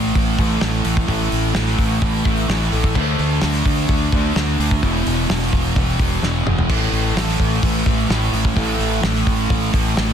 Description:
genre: rock, shoegaze and dream pop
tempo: 128 BPM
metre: 4/4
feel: straight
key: unclear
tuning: A4 = 442 Hz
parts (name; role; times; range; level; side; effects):
- thick fuzz guitar; riff; 0.0-10.1 s; E2 to D4; -20 LUFS; equal; distortion, wide subtle chorus
- growling fingered electric bass; bass; 0.0-10.1 s; E1 to D2; -21 LUFS; equal; overdrive
- loose indie drum kit; drums; 0.2-10.1 s; crash cymbal, hi-hat, kick drum, snare drum, toms; -21 LUFS; equal; none
room: small room ambience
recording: dense, heavily limited modern master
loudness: -16 LUFS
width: side -8 dB against mid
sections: 0.0-10.1 A section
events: drum fill 6.2-6.7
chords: 0.0 A5; 3.0 D5; 4.8 E5; 6.7 A5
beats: 0.16 0.62 | 1.09 1.56 2.03 2.50 | 2.96 3.43 3.90 4.36 | 4.83 5.30 5.76 6.23 | 6.70 7.17 7.63 8.10 | 8.57 9.03 9.50 9.97

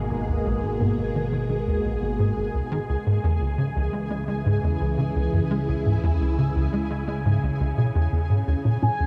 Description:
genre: ambient, sequencer-driven space music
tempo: 86 BPM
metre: 4/4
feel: straight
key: C# dorian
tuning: A4 = 440 Hz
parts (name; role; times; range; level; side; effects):
- phased string machine; sustained chords; 0.0-9.1 s; A#2 to Ab4; -30 LUFS; equal; ensemble chorus, phaser
- analog drone; bass; 0.0-9.1 s; G#1 to D#2; -34 LUFS; equal; chorus
- pulsing gated texture; texture; 0.0-9.1 s; G#4 to G#5; -38 LUFS; equal; chorus, built-in reverb
- tight sequencer bass; riff; 0.1-9.1 s; G#1 to G#3; -26 LUFS; equal; ensemble chorus, cassette tape, delay
- warbly dusty pluck; arpeggios; 8.7-8.9 s; C#4; -34 LUFS; equal; chorus
- expressive synth lead; melody; 8.8-9.1 s; G#5; -27 LUFS; equal; chorus
room: moderate huge ambient reverb, RT60 7.6 s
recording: cassette tape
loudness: -24 LUFS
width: mono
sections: 0.0-9.1 A section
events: none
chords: 0.0 G#madd9; 2.9 C#m; 8.5 D#m7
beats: | 0.10 0.80 1.50 2.20 | 2.90 3.59 4.29 4.99 | 5.69 6.38 7.08 7.78 | 8.48

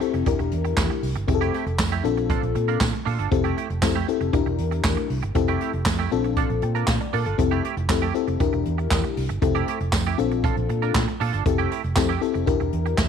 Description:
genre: early-eighties boogie funk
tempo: 118 BPM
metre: 4/4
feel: straight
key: F major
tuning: A4 = 440 Hz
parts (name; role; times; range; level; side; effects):
- FM electric piano with soft pad layer; accompaniment; 0.0-13.1 s; C4 to A5; -25 LUFS; left 11 dB; chorus
- semi-hollow electric guitar; riff; 0.0-13.0 s; A3 to Bb4; -30 LUFS; right 15 dB; analog chorus
- jazz brush drum kit; drums; 0.0-13.1 s; handclaps, hi-hat, kick drum, snare drum; -25 LUFS; right 2 dB; none
- vintage muted fingered electric bass; bass; 0.1-13.1 s; E1 to Bb2; -26 LUFS; right 2 dB; none
- tambourine; percussion; 0.8-13.1 s; none; -37 LUFS; right 16 dB; none
room: light reverb, small room ambience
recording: 1960s-style stereo with parts hard left and right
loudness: -20 LUFS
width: side -7 dB against mid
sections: 0.0-13.1 A section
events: none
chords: 0.3 C7/E (rootless); 1.3 Fmaj9; 2.0 Bbmaj7; 3.3 Fmaj9; 4.3 C7/E (rootless); 5.4 Fmaj9; 6.1 Bbmaj7; 7.4 Fmaj9; 8.4 C7/E (rootless); 9.4 Fmaj9; 10.2 Bbmaj7; 11.5 Fmaj9; 12.5 C7/E (rootless)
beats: 0.27 0.78 | 1.28 1.79 2.30 2.81 | 3.32 3.83 4.34 4.84 | 5.35 5.86 6.37 6.88 | 7.39 7.89 8.40 8.91 | 9.42 9.93 10.44 10.95 | 11.46 11.96 12.47 12.98

